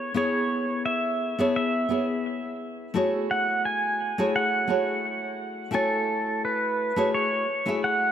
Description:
chillout; 86 BPM; 4/4; swing 55% on 16ths; A4 = 439 Hz
pedal steel guitar; melody; 0.0-8.1 s; A4 to G#5; -26 LUFS; equal; digital delay
nylon-string guitar; accompaniment; 0.0-8.1 s; A3 to G#5; -27 LUFS; equal; auto-pan
moderate plate reverb, RT60 2.9 s; dark, warm production; -23 LUFS; side -9 dB against mid
0.0-8.1 A section
0.0 Amaj9; 2.9 F#m9

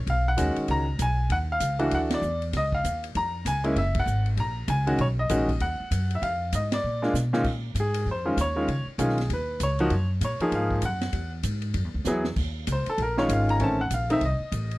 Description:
jazz piano trio; 195 BPM; 4/4; swing 62% on 8ths; Bb minor from 7.4 s; A4 = 440 Hz
upright bass; bass; 0.0-14.8 s; Gb1 to Cb3; -27 LUFS; equal
clear baby grand piano; melody; 0.1-14.8 s; Bb2 to A#5; -26 LUFS; equal
open jazz drum kit; drums; 0.1-14.8 s; crash cymbal, hi-hat, kick drum, ride cymbal, snare drum; -35 LUFS; equal
small room ambience; dry, close 1970s-style studio recording; -23 LUFS; side -19 dB against mid
0.0-7.4 A section; 7.4-14.8 B section
band accent 2.1, 3.9, 6.7; drum fill 7.1-7.4, 12.1-12.4; grand piano solo 7.4-14.8
0.1 Bmaj9; 1.3 Eb7(no3); 1.9 Dadd9; 2.5 Db69; 3.8 Gb; 5.0 Bmaj7; 6.2 Fm7; 6.8 Bb7; 7.4 Bbm9; 8.7 Db9; 9.9 Gbmaj9; 11.1 Eadd9; 12.4 Ebsus2; 13.6 Adim

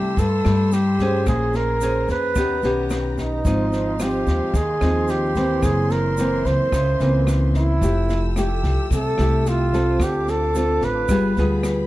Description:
bossa nova; 110 BPM; 4/4; straight; A4 = 440 Hz
breathy flugelhorn; melody; 0.0-11.7 s; Eb4 to B#4; -23 LUFS; right 2 dB; plate reverb
nylon-string guitar; accompaniment; 0.0-11.9 s; F#2 to C5; -22 LUFS; left 1 dB
warm symphonic string section; sustained chords; 0.0-11.9 s; Ab3 to E6; -36 LUFS; left 4 dB
upright bass; bass; 0.0-11.9 s; F1 to G2; -22 LUFS; equal
open jazz drum kit; drums; 0.2-11.8 s; kick drum, rim click, snare drum; -26 LUFS; equal
tube shaker; percussion; 0.2-11.9 s; -41 LUFS; right 6 dB
light reverb; dark, warm production; -18 LUFS; side -16 dB against mid
0.0-11.9 A section
0.0 C6; 1.3 Bbm9; 2.4 Eb7b13; 3.4 Ab6; 5.6 F#7#11; 7.8 Fmaj9; 10.0 Dm7; 11.1 G7b9

